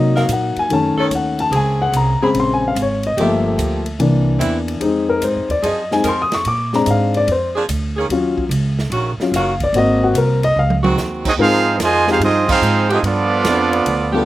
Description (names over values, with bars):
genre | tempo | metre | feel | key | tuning
jazz, big band swing | 146 BPM | 4/4 | swing 67% on 8ths | unclear | A4 = 440 Hz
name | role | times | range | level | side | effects
warm grand piano | accompaniment | 0.0-14.2 s | Db3 to Eb6 | -16 LUFS | left 3 dB | none
upright bass | bass | 0.0-14.2 s | Gb1 to C3 | -20 LUFS | right 2 dB | none
warm saxophone section | sustained chords | 0.1-14.2 s | Db3 to Bb4 | -21 LUFS | right 2 dB | none
swinging big-band drum kit | drums | 0.2-14.0 s | crash cymbal, hi-hat, kick drum, ride cymbal, snare drum, toms | -27 LUFS | right 2 dB | none
clear trombone section | second line | 11.2-14.2 s | Eb3 to F4 | -21 LUFS | right 5 dB | none
clear trumpet section | melody | 11.3-14.2 s | B3 to Ab5 | -16 LUFS | right 2 dB | slapback echo
room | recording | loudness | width
little or no reverb | recorded outdoors, with no room sound | -14 LUFS | side -15 dB against mid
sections
0.0-11.4 A section; 11.4-14.2 B section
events
grand piano solo 0.0-11.4; drum fill 10.6-11.0; band accent 12.4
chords
0.0 Cm7b5; 0.7 Cb9 (rootless); 1.5 Bbm9; 3.2 Gm7; 4.0 C7; 4.8 Fm7; 6.5 Bb7; 8.1 Ebm7; 9.7 Ab7; 11.4 Ab6; 13.0 G9